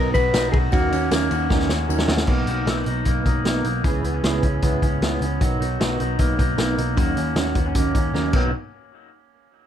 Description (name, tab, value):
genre	jangly indie pop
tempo	154 BPM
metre	4/4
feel	straight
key	B major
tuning	A4 = 441 Hz
part	mellow electric guitar	melody	0.0-1.1 s	F#4 to B4	-25 LUFS	left 1 dB	plate reverb, ping-pong delay
part	fingerpicked plugged-in steel-string acoustic guitar	accompaniment	0.0-8.5 s	B2 to B4	-28 LUFS	right 5 dB	none
part	overdriven combo organ	accompaniment	0.0-8.5 s	B3 to B4	-30 LUFS	right 5 dB	none
part	electric guitar through a small old amp	arpeggios	0.0-8.5 s	E3 to G#4	-26 LUFS	left 3 dB	none
part	vintage muted picked electric bass	bass	0.0-8.5 s	B1 to D#2	-25 LUFS	equal	none
part	vintage drum kit	drums	0.1-8.4 s	crash cymbal, hi-hat, kick drum, ride cymbal, snare drum	-22 LUFS	equal	none
part	tambourine	percussion	0.1-2.0 s	none	-40 LUFS	left 9 dB	none
room	light reverb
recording	dark, warm production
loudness	-18 LUFS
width	side -10 dB against mid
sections	0.0-2.3 A section; 2.3-8.5 B section; 8.5-9.7 C section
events	drum fill 1.5-2.3, 8.1-8.5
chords	0.0 Bmaj7; 0.7 D#m7; 2.3 Bmaj7; 3.8 C#m7; 5.4 Bmaj7; 7.0 D#m7; 8.3 Bmaj7; 8.5 N.C.